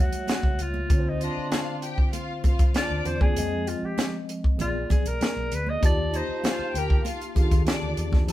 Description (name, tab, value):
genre	lush 1970s-style soul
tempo	98 BPM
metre	4/4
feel	straight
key	unclear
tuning	A4 = 440 Hz
part	breathy alto saxophone	melody	0.0-7.1 s	D4 to Eb5	-30 LUFS	equal	none
part	mellow tine electric piano	accompaniment	0.0-8.3 s	D3 to A5	-32 LUFS	left 1 dB	medium stereo tremolo
part	vintage muted fingered electric bass	bass	0.0-8.3 s	Bb1 to F2	-31 LUFS	equal	none
part	compact cocktail drum kit	drums	0.1-8.3 s	hi-hat, kick drum, snare drum	-23 LUFS	equal	none
part	congas	percussion	0.3-8.3 s	none	-36 LUFS	right 4 dB	none
part	warm studio string section	second line	1.2-8.1 s	D4 to G5	-33 LUFS	left 3 dB	none
room	light reverb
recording	band playing live in one room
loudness	-22 LUFS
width	side -14 dB against mid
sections	0.0-8.3 A section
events	alto saxophone solo 0.0-8.3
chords	0.0 A7; 0.9 Dm7; 3.4 Fm7; 4.6 Bb7b9; 5.8 Ebmaj9#11